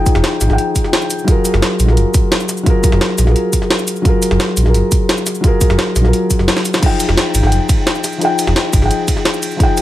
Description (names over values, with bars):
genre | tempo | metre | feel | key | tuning
liquid drum and bass | 173 BPM | 4/4 | straight | unclear | A4 = 440 Hz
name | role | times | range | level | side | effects
felt-muted upright piano | accompaniment | 0.0-9.8 s | F3 to G5 | -16 LUFS | left 2 dB | digital delay
electronic kick drum | drums | 0.1-9.7 s | none | -14 LUFS | equal | studio reverb
jungle sampler-style drum kit | drums | 0.1-9.8 s | cabasa, crash cymbal, hi-hat, ride cymbal, snare drum | -18 LUFS | equal | overdrive, studio reverb
sub bass with octave | bass | 0.2-8.9 s | F1 to Bb1 | -14 LUFS | equal | none
room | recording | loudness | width
light reverb | none | -12 LUFS | side -14 dB against mid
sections
0.0-6.8 A section; 6.8-9.8 A section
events
drop 0.0-6.8, 6.8-9.8; kick drops out 6.5-6.8; drum fill 6.6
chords
0.0 Fm9; 1.3 Gbmaj9; 6.8 Fm9